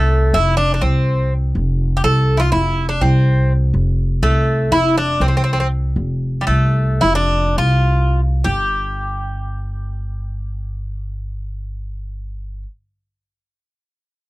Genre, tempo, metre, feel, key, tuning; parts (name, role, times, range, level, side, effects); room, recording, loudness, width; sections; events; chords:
Turkish makam ensemble; 197-247 BPM (eighths); 9/8; straight; F makam rast; A4 = 440 Hz
Greek bouzouki; melody; 0.0-12.6 s; G3 to A4; -18 LUFS; equal
upright bass; bass; 0.0-12.6 s; F1 to C2; -17 LUFS; equal
little or no reverb; dry, close 1970s-style studio recording; -15 LUFS; side -18 dB against mid
0.0-8.5 A section; 8.5-13.9 B section
slowing down 4.2-8.5